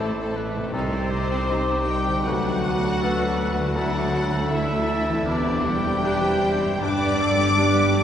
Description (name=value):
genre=cinematic, emotional film score for orchestra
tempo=79 BPM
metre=4/4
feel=rubato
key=unclear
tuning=A4 = 439 Hz
part: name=clear symphonic violin section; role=melody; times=0.0-8.0 s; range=C5 to D6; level=-27 LUFS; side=left 2 dB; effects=none
part: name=bright clarinet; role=second line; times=0.0-8.0 s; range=F#4 to C5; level=-30 LUFS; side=equal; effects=none
part: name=rich symphonic violin section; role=second line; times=0.0-8.0 s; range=A3 to A4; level=-32 LUFS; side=left 1 dB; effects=none
part: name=clear grand piano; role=accompaniment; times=0.0-8.0 s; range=A1 to B4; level=-28 LUFS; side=equal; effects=none
part: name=warm symphonic viola section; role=accompaniment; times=0.0-8.0 s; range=C4 to D5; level=-29 LUFS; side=right 2 dB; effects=none
part: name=dark French horn section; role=sustained chords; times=0.0-8.0 s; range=C3 to D4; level=-28 LUFS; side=left 1 dB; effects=none
part: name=concert harp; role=arpeggios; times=0.0-8.0 s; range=G2 to B4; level=-32 LUFS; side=left 1 dB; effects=none
part: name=rich symphonic double bass section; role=bass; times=0.0-8.0 s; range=E1 to D2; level=-31 LUFS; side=right 2 dB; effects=none
part: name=warm studio cello section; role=bass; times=0.0-8.0 s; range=C2 to A2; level=-30 LUFS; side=right 2 dB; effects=none
room=wet church reverb, RT60 3.3 s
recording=recorded in a church or concert hall, nothing above 10.5 kHz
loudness=-20 LUFS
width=side -9 dB against mid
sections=0.0-8.0 A section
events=none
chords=0.0 Am; 0.7 Cm; 2.3 Bm7/D; 3.8 Dadd9; 5.3 Cadd9/E; 6.8 G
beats=| 0.73 1.50 2.26 3.01 | 3.76 4.51 5.27 6.04 | 6.82 7.57